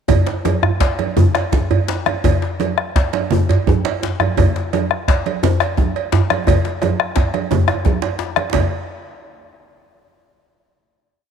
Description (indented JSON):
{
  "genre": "west african traditional, West African drum ensemble",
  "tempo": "114 BPM (dotted quarters)",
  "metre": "12/8",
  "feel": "straight",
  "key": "none",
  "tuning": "none",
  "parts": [
    { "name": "bombo", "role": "percussion", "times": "0.1-8.7 s", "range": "none", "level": "-19 LUFS", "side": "left 1 dB", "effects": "none" },
    { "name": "congas", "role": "percussion", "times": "0.1-8.7 s", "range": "none", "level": "-24 LUFS", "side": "right 9 dB", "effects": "none" },
    { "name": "cowbell", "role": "percussion", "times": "0.1-8.7 s", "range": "none", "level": "-25 LUFS", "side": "right 10 dB", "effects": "none" },
    { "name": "djembe", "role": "percussion", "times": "0.1-8.7 s", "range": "none", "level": "-21 LUFS", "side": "left 5 dB", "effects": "none" },
    { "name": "djembe", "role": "percussion", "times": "0.1-8.7 s", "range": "none", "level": "-20 LUFS", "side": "right 3 dB", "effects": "none" }
  ],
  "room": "light reverb, small room ambience",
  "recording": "1960s-style stereo",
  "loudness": "-15 LUFS",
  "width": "side -7 dB against mid",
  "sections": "0.1-8.5 A section; 8.5-10.6 final hit",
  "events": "speeding up 0.1-10.6; drum fill 6.5-8.5",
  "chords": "none",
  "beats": "| 0.09 0.63 1.17 1.70 | 2.24 2.78 3.31 3.85 | 4.38 4.91 5.43 5.96 | 6.48 7.00 7.51 8.03 | 8.54"
}